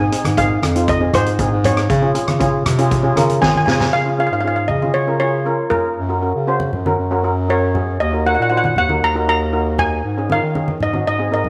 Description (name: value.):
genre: calypso.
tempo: 118 BPM.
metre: 4/4.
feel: straight.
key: Db major.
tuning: A4 = 436 Hz.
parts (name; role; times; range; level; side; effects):
steel pan; melody; 0.0-11.4 s; Bb4 to Bb5; -22 LUFS; equal; none.
steel pan; accompaniment; 0.0-11.5 s; C4 to C5; -23 LUFS; equal; none.
mellow bass clarinet; bass; 0.0-11.5 s; Eb2 to Eb3; -22 LUFS; equal; none.
street-band drum kit; drums; 0.1-3.9 s; hi-hat, kick drum, rim click, snare drum; -25 LUFS; equal; none.
congas; percussion; 0.2-11.5 s; none; -28 LUFS; equal; none.
room: moderate echo chamber reverb, RT60 2.0 s.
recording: none.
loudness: -17 LUFS.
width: mono.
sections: 0.0-3.9 A section; 3.9-11.5 B section.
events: drum fill 3.3-3.9.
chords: 0.0 Ab; 1.9 Db; 6.0 Gb; 8.0 Ebm; 10.0 Absus4.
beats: 0.38 0.88 1.39 | 1.90 2.41 2.91 3.42 | 3.93 4.44 4.95 5.46 | 5.97 6.48 6.99 7.50 | 8.00 8.51 9.02 9.53 | 10.04 10.55 11.06.